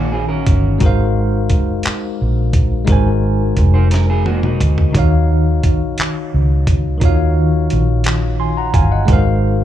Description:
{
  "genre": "slow six-eight R&B",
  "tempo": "58 BPM (dotted quarters)",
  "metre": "6/8",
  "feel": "straight",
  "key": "Eb dorian",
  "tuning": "A4 = 440 Hz",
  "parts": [
    { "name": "electric guitar at the edge of break-up", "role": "second line", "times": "0.0-4.9 s", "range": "Gb3 to C5", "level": "-24 LUFS", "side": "right 5 dB", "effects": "slapback echo" },
    { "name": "tine electric piano", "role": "accompaniment", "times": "0.0-9.6 s", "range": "Eb3 to C6", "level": "-19 LUFS", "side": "left 1 dB", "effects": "medium stereo tremolo, slapback echo" },
    { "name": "vintage muted fingered electric bass", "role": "bass", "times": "0.0-9.6 s", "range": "F1 to Eb2", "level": "-15 LUFS", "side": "equal", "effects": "none" },
    { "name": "dusty soul sampler-style drum kit", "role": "drums", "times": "0.5-9.2 s", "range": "handclaps, hi-hat, kick drum, snare drum, toms", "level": "-16 LUFS", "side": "equal", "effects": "none" }
  ],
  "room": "digital ambience",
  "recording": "live gig heard through the venue's PA, club reverb",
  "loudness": "-12 LUFS",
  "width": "side -12 dB against mid",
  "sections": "0.0-4.9 A section; 4.9-9.6 A section",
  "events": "drum fill 3.9-4.9",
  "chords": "0.0 Ebm9; 0.8 Ab13; 4.9 Ebm9; 9.1 Ab13"
}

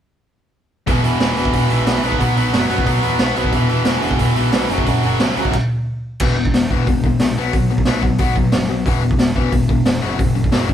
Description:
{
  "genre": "punk rock",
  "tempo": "180 BPM",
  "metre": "4/4",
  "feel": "straight",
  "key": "unclear",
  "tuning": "A4 = 440 Hz",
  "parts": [
    { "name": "distorted electric guitar", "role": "riff", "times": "0.9-10.7 s", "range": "E2 to B3", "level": "-20 LUFS", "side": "left 7 dB", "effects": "overdrive" },
    { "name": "tight distorted guitar", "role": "riff", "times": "0.9-5.5 s", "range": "E2 to B3", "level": "-20 LUFS", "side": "right 6 dB", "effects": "distortion" },
    { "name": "fuzz picked electric bass", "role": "bass", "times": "0.9-10.7 s", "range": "E1 to F#2", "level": "-26 LUFS", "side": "equal", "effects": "overdrive" },
    { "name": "raw garage drum kit", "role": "drums", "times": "0.9-10.7 s", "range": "crash cymbal, hi-hat, kick drum, snare drum", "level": "-17 LUFS", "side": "right 1 dB", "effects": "none" }
  ],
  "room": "light reverb",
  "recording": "band playing live in one room",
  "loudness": "-14 LUFS",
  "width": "side -10 dB against mid",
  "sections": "0.9-6.2 A section; 6.2-10.7 B section",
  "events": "stop 5.5-6.2",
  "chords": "0.9 E5; 2.0 B5; 3.5 E5; 4.7 F#5; 6.2 E5; 7.4 B5; 8.9 E5; 10.0 F#5"
}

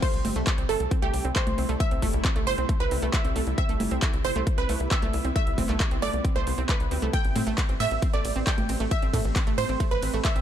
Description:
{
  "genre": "uplifting trance",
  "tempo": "135 BPM",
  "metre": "4/4",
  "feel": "straight",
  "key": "C major",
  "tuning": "A4 = 439 Hz",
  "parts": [
    { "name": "wide unison pluck", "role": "melody", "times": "0.0-10.4 s", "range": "G4 to G5", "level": "-31 LUFS", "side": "moving between left 8 dB and right 8 dB", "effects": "auto-pan, sidechain pumping, digital delay" },
    { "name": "clear concert grand piano", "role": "second line", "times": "0.0-10.4 s", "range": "G5 to G6", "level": "-37 LUFS", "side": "right 3 dB", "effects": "sidechain pumping, digital delay" },
    { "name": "shimmering ambient pad", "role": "sustained chords", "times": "0.0-10.4 s", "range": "C3 to E4", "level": "-35 LUFS", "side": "equal", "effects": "chorus, built-in reverb, sidechain pumping" },
    { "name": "analog pluck", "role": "arpeggios", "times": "0.0-10.4 s", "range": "A3 to C4", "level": "-34 LUFS", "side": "right 4 dB", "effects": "chorus, sidechain pumping, digital delay" },
    { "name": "big-room dance drum kit", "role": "drums", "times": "0.0-10.4 s", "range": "congas, crash cymbal, handclaps, hi-hat, ride cymbal", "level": "-32 LUFS", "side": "equal", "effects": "overdrive" },
    { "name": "electronic kick drum", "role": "drums", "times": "0.0-10.3 s", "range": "none", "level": "-26 LUFS", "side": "equal", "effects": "overdrive" },
    { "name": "tight sequencer bass", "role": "bass", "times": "0.1-10.4 s", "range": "G1 to A2", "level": "-30 LUFS", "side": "equal", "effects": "sidechain pumping" }
  ],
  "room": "little or no reverb",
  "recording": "dark, warm production",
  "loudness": "-23 LUFS",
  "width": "side -10 dB against mid",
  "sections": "0.0-10.4 A section",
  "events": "none",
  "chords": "0.0 C6; 7.1 Am7"
}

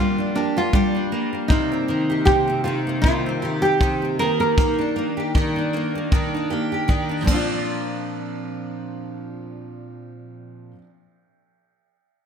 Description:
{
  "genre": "acoustic pop",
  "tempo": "78 BPM",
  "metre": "4/4",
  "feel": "swing 55% on 16ths",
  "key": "Bb major",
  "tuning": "A4 = 440 Hz",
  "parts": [
    { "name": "nylon-string guitar", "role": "melody", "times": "0.0-6.8 s", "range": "D4 to Bb4", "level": "-22 LUFS", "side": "equal", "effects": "digital delay" },
    { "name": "nylon-string guitar", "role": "accompaniment", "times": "0.0-10.8 s", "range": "Bb2 to G4", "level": "-24 LUFS", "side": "equal", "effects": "double-tracked left and right" },
    { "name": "picked steel-string acoustic guitar", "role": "arpeggios", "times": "0.0-10.9 s", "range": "F3 to G4", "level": "-31 LUFS", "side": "right 6 dB", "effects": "lush chorus" },
    { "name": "jazz brush drum kit", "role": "drums", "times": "0.7-7.5 s", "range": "kick drum, ride cymbal", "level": "-22 LUFS", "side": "equal", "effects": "none" }
  ],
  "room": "moderate plate reverb, RT60 1.7 s, small room ambience",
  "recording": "bright 1980s-style digital production",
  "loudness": "-19 LUFS",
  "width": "side -7 dB against mid",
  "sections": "0.0-7.7 A section; 7.7-10.7 B section",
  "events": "none",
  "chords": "0.0 Gm7; 1.5 Cm7; 7.3 Bbadd9"
}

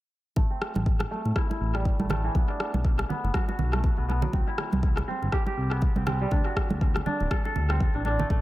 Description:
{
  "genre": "afro house",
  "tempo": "121 BPM",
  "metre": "4/4",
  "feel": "swing 57% on 16ths",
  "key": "A dorian",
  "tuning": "A4 = 438 Hz",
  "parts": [
    { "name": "kora", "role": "arpeggios", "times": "0.4-8.4 s", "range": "E3 to A4", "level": "-32 LUFS", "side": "right 1 dB", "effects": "sidechain pumping, low-pass filter, dub echo" },
    { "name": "smooth synth bass", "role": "bass", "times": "0.4-8.4 s", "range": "D1 to A2", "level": "-28 LUFS", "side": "equal", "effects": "sidechain pumping" },
    { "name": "electronic kick drum", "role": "drums", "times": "0.4-8.4 s", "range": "none", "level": "-26 LUFS", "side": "equal", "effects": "none" },
    { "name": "congas", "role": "percussion", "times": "0.4-8.4 s", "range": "none", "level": "-32 LUFS", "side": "right 3 dB", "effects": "dub echo" },
    { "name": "electronic rim click", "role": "drums", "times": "0.6-7.8 s", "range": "none", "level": "-34 LUFS", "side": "left 1 dB", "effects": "dub echo" }
  ],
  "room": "light reverb, studio reverb",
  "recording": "echo-heavy mix",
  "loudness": "-24 LUFS",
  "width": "side -16 dB against mid",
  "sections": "0.4-8.4 A section",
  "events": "filter sweep on kora 0.4-8.4",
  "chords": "0.4 Am; 2.4 Bm; 4.3 C; 6.3 D5"
}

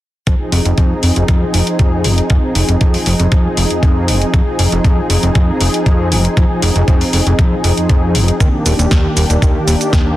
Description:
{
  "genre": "nu-disco, nu disco",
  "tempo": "118 BPM",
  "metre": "4/4",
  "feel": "straight",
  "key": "F dorian",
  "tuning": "A4 = 440 Hz",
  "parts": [
    { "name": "warm analog pad", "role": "accompaniment", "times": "0.3-10.2 s", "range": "Eb3 to Ab4", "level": "-17 LUFS", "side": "equal", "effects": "chorus, analog delay" },
    { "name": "fat analog bass", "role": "bass", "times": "0.3-10.2 s", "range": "Eb1 to F2", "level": "-15 LUFS", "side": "equal", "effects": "none" },
    { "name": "electronic kick drum", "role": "drums", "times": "0.3-10.0 s", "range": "none", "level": "-13 LUFS", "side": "equal", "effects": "none" },
    { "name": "house drum kit", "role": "drums", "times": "0.3-10.0 s", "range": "hi-hat, shaker, snare drum", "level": "-19 LUFS", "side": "left 1 dB", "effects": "none" }
  ],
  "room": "little or no reverb",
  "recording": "dense, heavily limited modern master",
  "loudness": "-11 LUFS",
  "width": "side -15 dB against mid",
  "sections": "0.3-10.2 A section",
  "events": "none",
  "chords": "0.3 Fm7; 8.4 Ebmaj7"
}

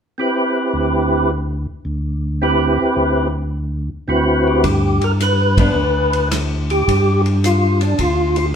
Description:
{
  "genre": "soul jazz organ trio",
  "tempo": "108 BPM",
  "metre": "4/4",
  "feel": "swing 67% on 8ths",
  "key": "G mixolydian",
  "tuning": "A4 = 440 Hz",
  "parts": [
    { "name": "percussive tonewheel organ", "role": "melody", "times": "0.2-8.5 s", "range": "C4 to B4", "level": "-17 LUFS", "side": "equal", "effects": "slow rotary speaker, overdrive, chorus vibrato" },
    { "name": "tonewheel organ", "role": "bass", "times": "0.7-8.6 s", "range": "D2 to G2", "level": "-18 LUFS", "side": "equal", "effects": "overdrive, chorus vibrato, slow rotary speaker" },
    { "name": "warm soul drum kit", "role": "drums", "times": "4.6-8.4 s", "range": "hi-hat, kick drum, ride cymbal, rim click", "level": "-23 LUFS", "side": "equal", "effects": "none" },
    { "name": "archtop guitar, miked and amplified", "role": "accompaniment", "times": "5.6-5.8 s", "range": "F3 to D4", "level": "-22 LUFS", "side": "right 1 dB", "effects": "none" }
  ],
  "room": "wet studio reverb, RT60 0.9 s",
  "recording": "heard from further back in the room",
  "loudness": "-15 LUFS",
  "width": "side -7 dB against mid",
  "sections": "0.2-4.6 A section; 4.6-8.6 B section",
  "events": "band accent 5.5",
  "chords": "0.2 D13sus4; 1.3 N.C.; 2.4 D13sus4; 4.6 G7"
}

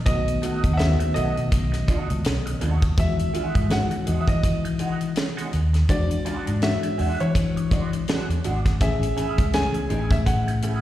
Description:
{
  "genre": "lush 1970s-style soul",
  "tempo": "82 BPM",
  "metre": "4/4",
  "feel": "swing 58% on 16ths",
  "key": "unclear",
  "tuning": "A4 = 440 Hz",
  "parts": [
    { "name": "reed electric piano", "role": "accompaniment", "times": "0.0-10.8 s", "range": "D#3 to G#4", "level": "-29 LUFS", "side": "left 3 dB", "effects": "tremolo, slapback echo" },
    { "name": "warm concert grand piano", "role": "melody", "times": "0.1-10.8 s", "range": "C#5 to G#5", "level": "-30 LUFS", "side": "right 1 dB", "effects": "slapback echo" },
    { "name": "fingered electric bass", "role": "bass", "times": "0.1-10.8 s", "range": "G#1 to E3", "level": "-24 LUFS", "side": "equal", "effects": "none" },
    { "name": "tight funk drum kit", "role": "drums", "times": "0.1-10.8 s", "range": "hi-hat, kick drum, snare drum", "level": "-24 LUFS", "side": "equal", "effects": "none" },
    { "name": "electric guitar through a small old amp", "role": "riff", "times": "0.4-10.8 s", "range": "G#3 to G#4", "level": "-33 LUFS", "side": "right 4 dB", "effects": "wah, phaser, slapback echo" }
  ],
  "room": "studio reverb",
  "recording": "live gig heard through the venue's PA, recital hall reverb",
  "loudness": "-20 LUFS",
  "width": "side -13 dB against mid",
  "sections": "0.0-10.8 A section",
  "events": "none",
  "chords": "0.1 B7; 3.0 Emaj9; 5.9 E9; 8.8 Amaj7"
}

